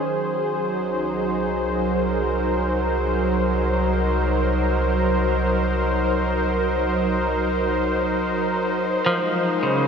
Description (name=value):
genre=ambient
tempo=free time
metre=none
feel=none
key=unclear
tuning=A4 = 440 Hz
part: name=warm analog pad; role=sustained chords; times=0.0-9.9 s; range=Gb3 to C5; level=-20 LUFS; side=equal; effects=chorus
part: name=round analog bass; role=bass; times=0.0-9.9 s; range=Bb1 to C2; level=-27 LUFS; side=equal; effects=none
part: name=clean electric guitar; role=arpeggios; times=9.1-9.9 s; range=Db3 to F3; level=-21 LUFS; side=equal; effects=tremolo
room=wet huge ambient reverb, RT60 8.0 s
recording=none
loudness=-20 LUFS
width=side -6 dB against mid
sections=0.0-9.9 A section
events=none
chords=0.0 Cm7b5; 9.1 Bbm11